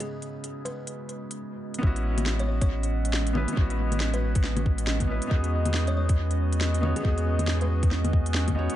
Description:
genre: future garage.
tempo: 138 BPM.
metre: 4/4.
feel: swing 61% on 16ths.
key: unclear.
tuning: A4 = 440 Hz.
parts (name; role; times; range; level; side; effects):
buzzing kalimba; melody; 0.0-8.2 s; G#4 to C#5; -40 LUFS; left 1 dB; dub echo.
felt-muted upright piano; accompaniment; 0.0-8.8 s; C#3 to C#5; -34 LUFS; equal; sidechain pumping, dub echo.
warbly tape-like pad; sustained chords; 0.0-8.8 s; G#3 to D#5; -34 LUFS; right 3 dB; chorus, built-in reverb, vintage 12-bit sampler grit, sidechain pumping.
organic electronic drum kit; drums; 0.0-8.8 s; bongos, hi-hat, snare drum; -32 LUFS; left 1 dB; dub echo.
warm sub bass; bass; 1.8-8.7 s; A1 to E2; -26 LUFS; equal; sidechain pumping.
electronic kick drum; drums; 1.8-8.6 s; none; -24 LUFS; equal; none.
room: light reverb.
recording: echo-heavy mix, nothing above 10.5 kHz.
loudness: -23 LUFS.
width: side -13 dB against mid.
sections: 0.0-1.8 A section; 1.8-8.8 B section.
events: none.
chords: 0.0 C#m7; 1.8 A69; 5.3 Emaj7.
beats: | 0.09 0.53 0.96 1.40 | 1.83 2.27 2.70 3.13 | 3.57 4.00 4.44 4.87 | 5.31 5.74 6.18 6.61 | 7.05 7.48 7.92 8.35.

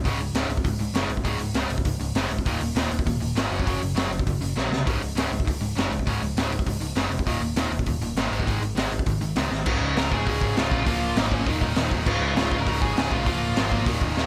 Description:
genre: punk rock.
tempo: 200 BPM.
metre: 4/4.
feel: straight.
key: Db major.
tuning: A4 = 440 Hz.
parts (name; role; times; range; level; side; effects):
cranked stack guitar; riff; 0.0-14.3 s; Db2 to Bb3; -32 LUFS; equal; overdrive.
overdriven picked electric bass; bass; 0.0-14.3 s; Db1 to Db2; -32 LUFS; equal; none.
overdriven semi-hollow guitar; riff; 0.1-14.3 s; Db2 to Bb3; -33 LUFS; equal; none.
raw garage drum kit; drums; 0.1-14.2 s; crash cymbal, hi-hat, kick drum, snare drum; -28 LUFS; equal; none.
bluesy overdriven lead guitar; melody; 10.0-13.8 s; Db4 to Bb5; -32 LUFS; equal; distortion.
room: light reverb.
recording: none.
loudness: -25 LUFS.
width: mono.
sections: 0.0-9.7 A section; 9.7-14.3 B section.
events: drum fill 4.6-4.9, 9.5.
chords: 0.1 Db5; 2.5 Eb5; 3.5 Gb5; 4.9 Db5; 7.3 Eb5; 8.3 Ab5; 9.7 Db; 10.9 Bbm/Db; 11.5 Eb5; 12.1 Db.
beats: | 0.05 0.35 0.65 0.95 | 1.26 1.56 1.86 2.16 | 2.46 2.76 3.06 3.36 | 3.66 3.96 4.26 4.56 | 4.86 5.16 5.46 5.76 | 6.06 6.37 6.67 6.97 | 7.27 7.57 7.87 8.17 | 8.47 8.77 9.07 9.37 | 9.67 9.97 10.27 10.57 | 10.87 11.17 11.47 11.77 | 12.07 12.37 12.66 12.96 | 13.27 13.56 13.86 14.16.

